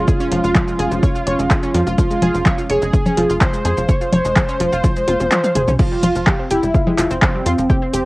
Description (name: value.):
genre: melodic techno.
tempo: 126 BPM.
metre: 4/4.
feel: straight.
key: unclear.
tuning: A4 = 440 Hz.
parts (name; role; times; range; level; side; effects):
analog synth brass; melody; 0.0-8.1 s; C4 to C5; -20 LUFS; right 1 dB; chorus, sidechain pumping, cassette tape, analog delay.
dark analog pad; sustained chords; 0.0-5.8 s; F3 to Db4; -27 LUFS; left 1 dB; chorus, sidechain pumping, cassette tape.
tight sequencer bass; bass; 0.0-8.0 s; F1 to F2; -22 LUFS; equal; sidechain pumping.
analog pluck; arpeggios; 0.1-8.0 s; F3 to F6; -22 LUFS; equal; chorus, sidechain pumping, cassette tape, analog delay.
electronic kick drum; drums; 0.1-7.8 s; none; -16 LUFS; equal; overdrive.
punchy analog drum machine; drums; 0.1-8.0 s; congas, crash cymbal, handclaps, hi-hat, shaker, toms; -19 LUFS; equal; overdrive.
room: moderate booth ambience, RT60 0.2 s.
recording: home recording on cassette.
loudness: -14 LUFS.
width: side -21 dB against mid.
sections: 0.0-5.8 A section; 5.8-8.1 A section.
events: drop 0.0-5.8, 5.8-8.1; drum fill 5.1-5.8; kick drops out 5.3-5.8.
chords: 0.0 Db/F; 5.8 Fsus2.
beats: | 0.08 0.55 1.03 1.51 | 1.98 2.46 2.94 3.41 | 3.89 4.36 4.84 5.32 | 5.79 6.27 6.75 7.22 | 7.70.